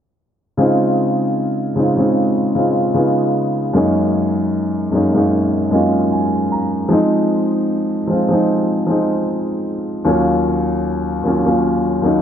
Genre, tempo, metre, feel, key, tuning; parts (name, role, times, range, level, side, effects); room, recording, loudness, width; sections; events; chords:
R&B; 76 BPM; 4/4; swing 54% on 16ths; Db major; A4 = 440 Hz
warm grand piano; accompaniment; 0.6-12.2 s; Eb2 to Bb5; -14 LUFS; equal
moderate plate reverb, RT60 2.9 s; low-pass filter; -14 LUFS; side -9 dB against mid
0.6-12.2 A section
filter sweep 0.6-12.2; grand piano fill 5.3-6.9
0.6 Dbmaj7; 3.0 Db9; 3.7 Gb69; 6.9 Fm7; 10.1 Ebm7